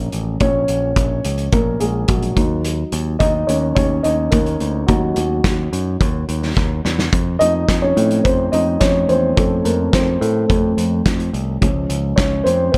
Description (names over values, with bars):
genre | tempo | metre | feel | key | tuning
piano-driven pop | 107 BPM | 4/4 | straight | unclear | A4 = 440 Hz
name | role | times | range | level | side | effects
dark upright piano | accompaniment | 0.0-12.8 s | F3 to Eb5 | -21 LUFS | equal | none
picked electric bass | bass | 0.0-12.8 s | A1 to A2 | -23 LUFS | equal | none
loose indie drum kit | drums | 0.1-12.8 s | hi-hat, kick drum, snare drum | -22 LUFS | equal | none
room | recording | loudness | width
light reverb, small room ambience | none | -17 LUFS | mono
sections
0.0-12.8 A section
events
upright piano solo 0.0-12.8; drum fill 6.6-7.1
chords
0.0 Bbm; 2.4 Ebm; 7.1 F; 11.6 Db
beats
| 0.41 0.97 1.53 2.09 | 2.65 3.21 3.77 4.33 | 4.89 5.45 6.01 6.57 | 7.13 7.69 8.25 8.81 | 9.37 9.93 10.49 11.05 | 11.61 12.18 12.74